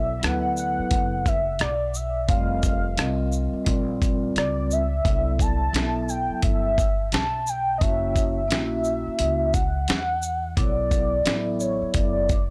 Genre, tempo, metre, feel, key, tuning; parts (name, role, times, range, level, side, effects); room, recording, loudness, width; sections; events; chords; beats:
hip hop, jazz-hop; 87 BPM; 4/4; swing 62% on 16ths; A4 = 440 Hz
warm velvety synth lead; melody; 0.0-12.5 s; C#5 to A5; -28 LUFS; equal; chorus, analog delay
vibraphone with soft mallets; accompaniment; 0.0-12.4 s; F#3 to E5; -31 LUFS; equal
upright bass; bass; 0.0-12.5 s; F1 to E2; -31 LUFS; equal; transformer saturation
dusty soul sampler-style drum kit; drums; 0.2-12.5 s; hi-hat, kick drum, rim click, shaker, snare drum; -26 LUFS; equal
digital ambience; dry, gritty hardware recording; -24 LUFS; mono
0.0-12.5 A section
0.0 Bm7; 2.3 F5; 3.7 Bbadd9; 5.0 Cmaj7; 7.8 F#7; 10.6 Bm7
0.22 0.91 1.60 | 2.29 2.98 3.67 4.36 | 5.05 5.74 6.43 7.12 | 7.81 8.50 9.19 9.88 | 10.57 11.26 11.95